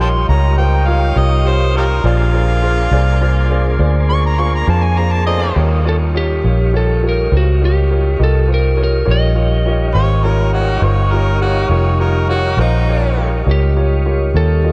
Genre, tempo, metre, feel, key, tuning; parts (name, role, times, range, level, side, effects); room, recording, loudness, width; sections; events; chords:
slow blues; 68 BPM (dotted quarters); 12/8; straight; Eb mixolydian; A4 = 440 Hz
warm harmonica; second line; 0.0-13.3 s; Eb4 to Db6; -23 LUFS; equal; overdrive, analog delay
clear upright piano; accompaniment; 0.0-14.7 s; F4 to F5; -24 LUFS; equal; subtle chorus
tonewheel organ; sustained chords; 0.0-14.7 s; G3 to D5; -26 LUFS; equal; slow rotary speaker
vintage muted fingered electric bass; bass; 0.0-14.7 s; F1 to F2; -16 LUFS; equal
lightly driven lead guitar; melody; 5.9-14.7 s; Gb4 to Eb5; -23 LUFS; equal
moderate huge ambient reverb, RT60 4.3 s; dreamy mix soaked in reverb; -15 LUFS; mono
0.0-5.6 A section; 5.6-14.7 B section
harmonica solo 0.0-5.6
0.0 Eb9; 2.0 Bb9; 5.6 Eb9